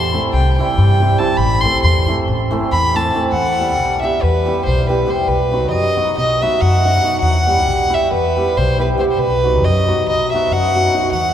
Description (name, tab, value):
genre	balkan folk, Balkan wedding band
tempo	278 BPM (eighths)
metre	9/8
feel	straight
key	unclear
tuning	A4 = 440 Hz
part	warm violin	melody	0.0-11.3 s	B4 to C6	-17 LUFS	equal	none
part	hammered dulcimer	accompaniment	0.0-11.2 s	E3 to G4	-19 LUFS	right 1 dB	none
part	upright bass	bass	0.0-11.3 s	A1 to G2	-18 LUFS	equal	none
room	wet cathedral reverb, RT60 5.4 s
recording	recorded in a church or concert hall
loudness	-13 LUFS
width	side -10 dB against mid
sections	0.0-3.3 A section; 3.3-11.3 B section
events	violin solo 0.0-3.3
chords	0.3 C; 1.4 Am; 3.3 Em; 5.3 B; 7.2 Em; 9.2 B